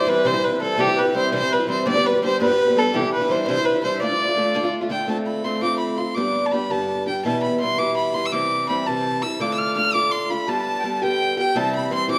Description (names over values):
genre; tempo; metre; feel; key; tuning
celtic folk; 112 BPM (dotted quarters); 6/8; straight; D dorian; A4 = 436 Hz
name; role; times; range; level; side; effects
warm fiddle; melody; 0.0-12.2 s; G4 to F6; -24 LUFS; equal; none
accordion; second line; 0.0-4.7, 9.4-12.2 s; G4 to F6; -30 LUFS; equal; none
picked acoustic archtop guitar; accompaniment; 0.0-12.2 s; E2 to G4; -25 LUFS; equal; none
room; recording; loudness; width
wet recital hall reverb, RT60 1.6 s; none; -21 LUFS; mono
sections
0.0-5.1 A section; 5.1-12.2 B section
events
none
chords
0.0 C; 1.9 G; 2.9 Cadd9; 4.0 Dm; 5.1 Dm7; 6.2 G; 7.2 Em; 8.3 C; 9.4 Dm; 10.5 G/D; 11.6 C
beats
0.25 | 0.79 1.33 | 1.87 2.40 | 2.94 3.48 | 4.02 4.55 | 5.09 5.63 | 6.17 6.71 | 7.25 7.79 | 8.32 8.86 | 9.40 9.94 | 10.48 11.02 | 11.55 12.09